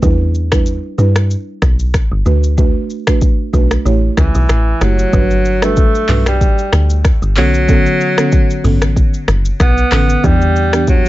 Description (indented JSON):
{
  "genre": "afrobeats",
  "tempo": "94 BPM",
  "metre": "4/4",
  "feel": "swing 55% on 16ths",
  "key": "unclear",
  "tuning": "A4 = 440 Hz",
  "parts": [
    { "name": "buzzing marimba with soft mallets", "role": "accompaniment", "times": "0.0-10.9 s", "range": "D3 to C#5", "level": "-19 LUFS", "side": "right 2 dB", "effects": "plate reverb" },
    { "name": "deep log drum bass", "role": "bass", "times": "0.0-11.0 s", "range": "F#1 to G2", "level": "-14 LUFS", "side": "equal", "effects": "none" },
    { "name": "afro-pop drum kit", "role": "drums", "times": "0.0-11.1 s", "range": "finger snaps, handclaps, hi-hat, kick drum, rim click, shaker, toms", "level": "-14 LUFS", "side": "equal", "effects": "vintage 12-bit sampler grit" },
    { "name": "breathy alto saxophone", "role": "melody", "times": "4.2-11.1 s", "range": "E3 to B3", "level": "-17 LUFS", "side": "equal", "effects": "plate reverb, ping-pong delay" }
  ],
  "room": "little or no reverb",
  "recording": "nothing above 7.7 kHz",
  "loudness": "-11 LUFS",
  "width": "side -16 dB against mid",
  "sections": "0.0-5.1 A section; 5.1-11.1 B section",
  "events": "none",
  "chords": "0.0 Em7; 2.3 D6; 3.9 A7; 5.1 Gmaj7; 7.4 Bm9; 10.2 Em7"
}